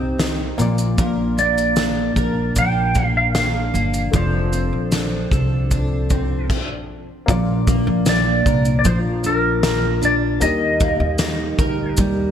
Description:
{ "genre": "acoustic pop", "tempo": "76 BPM", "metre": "4/4", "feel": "straight", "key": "Bb major", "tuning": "A4 = 440 Hz", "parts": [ { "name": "dark baby grand piano", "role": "accompaniment", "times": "0.0-12.3 s", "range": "A3 to Eb5", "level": "-30 LUFS", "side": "left 5 dB", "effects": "lush chorus" }, { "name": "fingerpicked steel-string acoustic guitar", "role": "accompaniment", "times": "0.0-12.3 s", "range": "Bb2 to Bb4", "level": "-23 LUFS", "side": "equal", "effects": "double-tracked left and right" }, { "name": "upright bass", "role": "bass", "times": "0.0-12.3 s", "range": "F1 to Eb2", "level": "-22 LUFS", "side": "equal", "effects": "none" }, { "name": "loose indie drum kit", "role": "drums", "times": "0.2-12.2 s", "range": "crash cymbal, kick drum, shaker, snare drum", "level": "-22 LUFS", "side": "equal", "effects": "gated reverb" }, { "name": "mellow tonewheel organ", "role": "sustained chords", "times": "1.0-12.3 s", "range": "F3 to Bb4", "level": "-29 LUFS", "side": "right 1 dB", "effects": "slow rotary speaker" }, { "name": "clean lap steel guitar", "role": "melody", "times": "1.4-11.9 s", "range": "Bb4 to G5", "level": "-21 LUFS", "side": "right 1 dB", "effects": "analog chorus" } ], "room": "light reverb, small room ambience", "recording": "bright 1980s-style digital production", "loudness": "-16 LUFS", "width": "side -9 dB against mid", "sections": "0.0-7.3 A section; 7.3-12.3 B section", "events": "stop 6.5-7.3", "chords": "0.0 Cm; 0.6 Bb; 4.1 F6; 7.3 Bb; 10.4 Eb" }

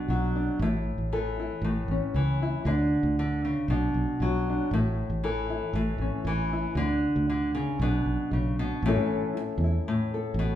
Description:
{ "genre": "highlife guitar band", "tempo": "117 BPM", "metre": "4/4", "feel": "straight", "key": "A major", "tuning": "A4 = 439 Hz", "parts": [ { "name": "nylon-string guitar", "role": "accompaniment", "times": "0.0-10.6 s", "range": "A2 to A4", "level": "-27 LUFS", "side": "left 1 dB", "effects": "none" }, { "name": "fingered electric bass", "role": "bass", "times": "0.1-10.5 s", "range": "A1 to A2", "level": "-28 LUFS", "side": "right 1 dB", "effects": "none" } ], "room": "wet large studio reverb, RT60 1.3 s", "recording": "band playing live in one room", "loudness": "-25 LUFS", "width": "side -11 dB against mid", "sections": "0.0-8.8 A section; 8.8-10.6 B section", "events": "none", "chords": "0.0 Bm; 0.6 A; 2.7 N.C.; 3.7 Bm; 4.7 A; 6.8 N.C.; 7.8 Bmadd9; 8.8 A" }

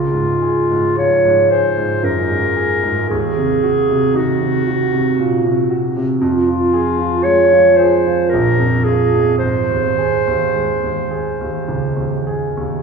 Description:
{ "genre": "classical, romantic duo for clarinet and grand piano", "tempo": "52-60 BPM", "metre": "3/4", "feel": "rubato", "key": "Db major", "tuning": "A4 = 442 Hz", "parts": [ { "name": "clear clarinet", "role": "melody", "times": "0.0-12.2 s", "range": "F4 to Db5", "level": "-16 LUFS", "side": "right 1 dB", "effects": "none" }, { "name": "clear concert grand piano", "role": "accompaniment", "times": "0.0-12.8 s", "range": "Ab1 to Ab4", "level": "-17 LUFS", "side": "right 1 dB", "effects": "none" } ], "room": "wet scoring stage reverb, RT60 2.1 s", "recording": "heard from further back in the room, small room reverb", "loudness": "-13 LUFS", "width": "side -5 dB against mid", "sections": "0.0-12.8 A section", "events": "none", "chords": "0.0 Db; 3.1 Cdim/Eb; 6.2 Fm; 8.3 Bb5; 9.4 Ab" }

